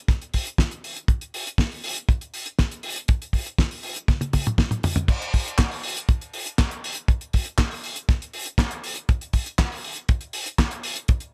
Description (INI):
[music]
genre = italo disco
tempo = 120 BPM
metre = 4/4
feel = straight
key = none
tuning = none
[part]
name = damped 70s drum kit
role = drums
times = 0.1-11.3 s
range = crash cymbal, handclaps, hi-hat, snare drum, toms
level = -29 LUFS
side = equal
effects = none
[part]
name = kick drum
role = drums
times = 0.1-11.2 s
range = none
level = -22 LUFS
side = equal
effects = none
[sound]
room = little or no reverb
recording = none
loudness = -25 LUFS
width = mono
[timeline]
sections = 0.0-5.1 A section; 5.1-11.3 B section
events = drum fill 4.1-5.1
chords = none